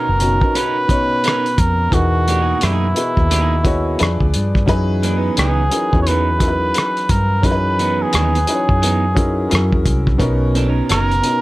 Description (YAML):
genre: R&B, neo-soul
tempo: 87 BPM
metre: 4/4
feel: swing 64% on 16ths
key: unclear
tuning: A4 = 440 Hz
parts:
  - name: trumpet with cup mute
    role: melody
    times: 0.0-11.4 s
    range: E4 to C#5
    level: -20 LUFS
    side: right 1 dB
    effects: none
  - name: electric guitar at the edge of break-up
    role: second line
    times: 0.0-11.1 s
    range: E3 to A#4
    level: -23 LUFS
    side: right 6 dB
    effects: none
  - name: warm upright piano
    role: accompaniment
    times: 0.0-11.4 s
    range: B2 to D#5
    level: -21 LUFS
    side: left 1 dB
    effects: none
  - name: vintage muted fingered electric bass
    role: bass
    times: 0.1-11.2 s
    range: F#1 to G2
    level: -18 LUFS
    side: equal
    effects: none
  - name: cloth-damped thuddy drum kit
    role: drums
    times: 0.2-11.4 s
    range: hi-hat, kick drum, rim click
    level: -19 LUFS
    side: equal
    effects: none
room: light reverb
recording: none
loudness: -14 LUFS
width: side -18 dB against mid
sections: 0.0-11.4 A section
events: none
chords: 0.0 Bmaj9; 1.9 Emaj9#11; 4.0 Fdim7; 4.7 F#13sus4; 9.5 F#9; 10.2 Bmaj9